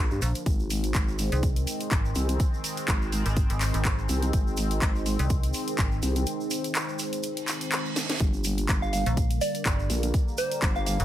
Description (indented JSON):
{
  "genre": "bass house",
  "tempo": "124 BPM",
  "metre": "4/4",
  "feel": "swing 55% on 16ths",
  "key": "unclear",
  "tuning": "A4 = 440 Hz",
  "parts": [
    { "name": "sweeping resonant pad", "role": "sustained chords", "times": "0.0-11.0 s", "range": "D3 to C4", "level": "-33 LUFS", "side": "equal", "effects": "chorus, sidechain pumping" },
    { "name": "vowel-sweep wobble bass", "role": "bass", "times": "0.0-11.0 s", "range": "G1 to G2", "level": "-27 LUFS", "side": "equal", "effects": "chorus, overdrive, sidechain pumping" },
    { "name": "egg shaker", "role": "percussion", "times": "0.1-11.0 s", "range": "none", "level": "-39 LUFS", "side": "right 5 dB", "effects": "none" },
    { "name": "metallic FM bass", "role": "bass", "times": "0.2-6.0, 9.1-11.0 s", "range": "G1 to C2", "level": "-27 LUFS", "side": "equal", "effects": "overdrive, sidechain pumping" },
    { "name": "house drum kit", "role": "drums", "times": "0.2-11.0 s", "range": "handclaps, hi-hat, snare drum", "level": "-32 LUFS", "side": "equal", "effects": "small room reverb" },
    { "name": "electronic kick drum", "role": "drums", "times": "0.5-10.7 s", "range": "none", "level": "-26 LUFS", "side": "equal", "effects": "small room reverb" },
    { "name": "reverse cymbal", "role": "sound effects", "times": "7.4-8.2 s", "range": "none", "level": "-36 LUFS", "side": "right 6 dB", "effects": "none" },
    { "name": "soft synth bell", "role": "melody", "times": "8.8-11.0 s", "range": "C5 to F5", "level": "-30 LUFS", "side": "right 2 dB", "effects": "chorus, phaser, tape echo" }
  ],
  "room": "little or no reverb",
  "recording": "none",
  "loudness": "-24 LUFS",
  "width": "side -12 dB against mid",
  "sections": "0.0-11.0 A section",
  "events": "break 6.3-8.2; reverse cymbal 7.4-8.2; drum fill 8.0",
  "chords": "0.5 Ab; 8.2 Gm"
}